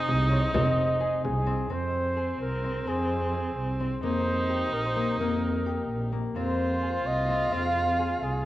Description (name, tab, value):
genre	contemporary instrumental, chamber music in an uneven meter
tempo	258 BPM (eighths)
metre	5/8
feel	straight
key	F minor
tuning	A4 = 441 Hz
part	clear viola	second line	0.0-8.5 s	C4 to F4	-31 LUFS	right 1 dB	none
part	concert harp	arpeggios	0.0-8.5 s	Bb3 to Ab4	-33 LUFS	left 5 dB	none
part	dark double bass	bass	0.1-8.5 s	F1 to F2	-29 LUFS	right 1 dB	none
part	frame drum	percussion	0.1-1.5 s	none	-33 LUFS	left 2 dB	none
part	warm flugelhorn	melody	0.3-8.5 s	Ab4 to F5	-30 LUFS	right 1 dB	none
room	moderate scoring stage reverb, RT60 2.1 s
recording	worn, warbling old tape, cassette tape, warbly pitch drift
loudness	-25 LUFS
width	side -15 dB against mid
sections	0.0-1.7 A section; 1.7-8.5 B section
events	none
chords	0.0 Fm7; 1.7 Fm; 4.0 Eb; 6.4 Fm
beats	0.08 0.31 | 0.54 0.78 1.01 1.24 1.47 | 1.71 1.94 2.17 2.40 2.64 | 2.87 3.10 3.33 3.57 3.80 | 4.03 4.27 4.50 4.73 4.96 | 5.20 5.43 5.66 5.89 6.13 | 6.36 6.59 6.83 7.06 7.29 | 7.52 7.76 7.99 8.22